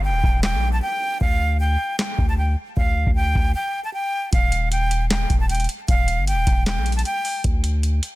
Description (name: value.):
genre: hip hop, trap.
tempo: 154 BPM.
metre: 4/4.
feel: half-time.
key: unclear.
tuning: A4 = 443 Hz.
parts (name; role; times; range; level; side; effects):
breathy bright jazz flute; melody; 0.0-7.4 s; F5 to A5; -24 LUFS; equal; ping-pong delay.
long sustained 808-style bass; bass; 0.0-8.0 s; Eb1 to D2; -21 LUFS; equal; none.
downlifter; sound effects; 0.0-1.2 s; none; -41 LUFS; equal; none.
booming analog drum machine; drums; 0.2-8.1 s; handclaps, hi-hat, kick drum, snare drum; -21 LUFS; equal; none.
room: digital ambience.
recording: dense, heavily limited modern master.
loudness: -18 LUFS.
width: side -18 dB against mid.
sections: 0.0-8.2 A section.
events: break 0.0-4.3.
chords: 0.0 Eb; 1.2 Dm; 4.3 Eb; 7.4 N.C..